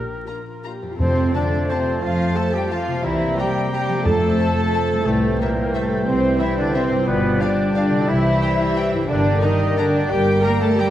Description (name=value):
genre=classical, orchestral ballroom waltz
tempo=178 BPM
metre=3/4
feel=uneven beats, rubato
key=F major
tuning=A4 = 439 Hz
part: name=warm oboe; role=second line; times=0.0-10.9 s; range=Bb4 to Bb5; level=-32 LUFS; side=equal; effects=none
part: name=warm studio viola section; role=accompaniment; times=0.0-10.9 s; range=A3 to Bb4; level=-26 LUFS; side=right 1 dB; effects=none
part: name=concert harp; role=arpeggios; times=0.0-10.9 s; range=F2 to D5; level=-27 LUFS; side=left 3 dB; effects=none
part: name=clear studio cello section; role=bass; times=0.0-10.9 s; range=A2 to Bb3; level=-24 LUFS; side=right 1 dB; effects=none
part: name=dark studio double bass section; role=bass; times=0.0-10.4 s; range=G1 to F2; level=-26 LUFS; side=right 1 dB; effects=none
part: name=warm symphonic violin section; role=melody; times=0.3-10.9 s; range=E5 to Bb5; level=-34 LUFS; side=left 5 dB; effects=none
part: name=warm symphonic violin section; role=second line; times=0.3-10.9 s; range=F4 to Bb5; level=-31 LUFS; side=left 3 dB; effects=none
part: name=dark French horn section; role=sustained chords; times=0.3-10.9 s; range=G3 to Bb4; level=-28 LUFS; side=left 3 dB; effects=none
part: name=clear clarinet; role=second line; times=1.0-10.9 s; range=C5 to D5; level=-31 LUFS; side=left 2 dB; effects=none
part: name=silver concert flute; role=second line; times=1.0-10.9 s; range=A4 to Bb5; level=-28 LUFS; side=left 1 dB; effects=none
part: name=dark bassoon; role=accompaniment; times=1.0-10.9 s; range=E3 to Bb3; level=-28 LUFS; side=right 2 dB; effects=none
part: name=clear trumpet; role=stabs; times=1.0-10.9 s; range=A3 to Bb4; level=-27 LUFS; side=right 1 dB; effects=none
part: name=timpani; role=percussion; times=1.0-1.5, 4.1-4.5 s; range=F2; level=-24 LUFS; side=equal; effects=none
room=wet scoring stage reverb, RT60 1.6 s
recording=vinyl crackle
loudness=-17 LUFS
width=side -12 dB against mid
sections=1.0-10.9 A section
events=none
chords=0.0 Bb; 1.0 F; 3.0 C7; 4.1 F; 5.1 C; 7.1 G7; 8.1 C; 9.1 Gm